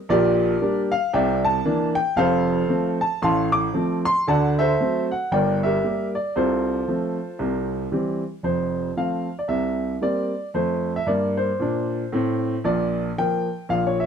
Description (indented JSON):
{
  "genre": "jazz, stride piano",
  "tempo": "115 BPM",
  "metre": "4/4",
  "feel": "swing 58% on 8ths",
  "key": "F major",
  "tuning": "A4 = 440 Hz",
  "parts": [
    { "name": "clear baby grand piano", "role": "solo", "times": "0.1-14.1 s", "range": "F1 to D6", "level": "-20 LUFS", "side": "equal", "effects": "none" }
  ],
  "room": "light reverb",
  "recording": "dark, warm production",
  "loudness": "-20 LUFS",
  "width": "side -7 dB against mid",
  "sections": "0.0-8.4 A section; 8.4-14.1 B section",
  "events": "none",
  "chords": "0.1 Gm/Bb; 1.1 C9; 2.2 F; 3.2 F/A; 4.3 D7; 5.3 Gm; 6.4 F/C; 7.4 C; 8.4 F; 9.5 C7; 10.5 F; 12.6 Bb"
}